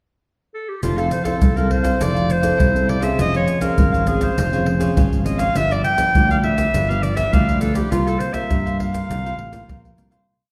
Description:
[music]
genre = samba and choro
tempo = 102 BPM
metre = 4/4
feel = straight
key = F major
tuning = A4 = 436 Hz
[part]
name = clear clarinet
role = melody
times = 0.5-9.9 s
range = F4 to G5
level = -24 LUFS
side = equal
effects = none
[part]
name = cavaquinho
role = accompaniment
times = 0.8-10.3 s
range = E4 to F5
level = -30 LUFS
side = equal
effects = none
[part]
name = nylon-string guitar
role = accompaniment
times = 0.8-10.2 s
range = G2 to A4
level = -28 LUFS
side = equal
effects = none
[part]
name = fingered electric bass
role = bass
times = 0.8-10.2 s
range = F1 to G2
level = -24 LUFS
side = equal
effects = none
[part]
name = maracas, surdo and pandeiro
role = percussion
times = 0.8-10.3 s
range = none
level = -23 LUFS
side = equal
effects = none
[sound]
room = wet recital hall reverb, RT60 1.4 s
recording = recorded in a church or concert hall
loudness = -19 LUFS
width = mono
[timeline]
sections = 0.0-0.8 pickup bar; 0.8-10.3 A section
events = fade-out 7.9-10.3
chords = 0.0 N.C.; 0.8 Fmaj7; 3.2 Dbmaj7/F; 5.6 G7; 7.9 C7sus4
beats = 0.24 | 0.83 1.42 2.01 2.60 | 3.19 3.79 4.38 4.97 | 5.56 6.15 6.74 7.33 | 7.92 8.51 9.10 9.69

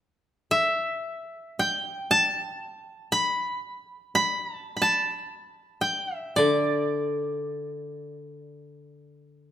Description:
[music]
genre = japanese traditional, Japanese chamber music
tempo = free time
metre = none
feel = none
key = unclear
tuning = A4 = 440 Hz
[part]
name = koto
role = melody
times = 0.5-9.5 s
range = D5 to B5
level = -24 LUFS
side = equal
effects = none
[part]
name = koto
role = accompaniment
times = 6.4-9.5 s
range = D3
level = -27 LUFS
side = left 2 dB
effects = none
[sound]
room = moderate recital hall reverb, RT60 1.7 s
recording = none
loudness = -24 LUFS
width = side -11 dB against mid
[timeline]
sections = 0.0-9.5 A section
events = none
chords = none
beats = free time

